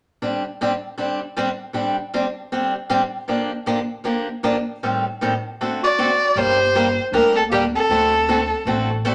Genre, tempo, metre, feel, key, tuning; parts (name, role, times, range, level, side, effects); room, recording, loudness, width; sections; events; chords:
acoustic string swing (jazz manouche); 156 BPM; 4/4; swing 61% on 8ths; A4 = 440 Hz
picked swing-style acoustic guitar; accompaniment; 0.2-9.1 s; A2 to A4; -24 LUFS; equal
warm violin; melody; 5.8-8.9 s; G4 to D5; -20 LUFS; equal
mellow clarinet; second line; 5.8-8.9 s; Bb3 to G4; -31 LUFS; equal
upright bass; bass; 6.4-9.1 s; G1 to D2; -30 LUFS; equal
wet studio reverb, RT60 0.8 s; -21 LUFS; mono
0.2-6.4 A section; 6.4-9.1 B section
0.2 D7sus4; 3.3 Gm7/D; 4.8 Am7b5; 5.6 D7; 6.4 Gm; 7.9 D7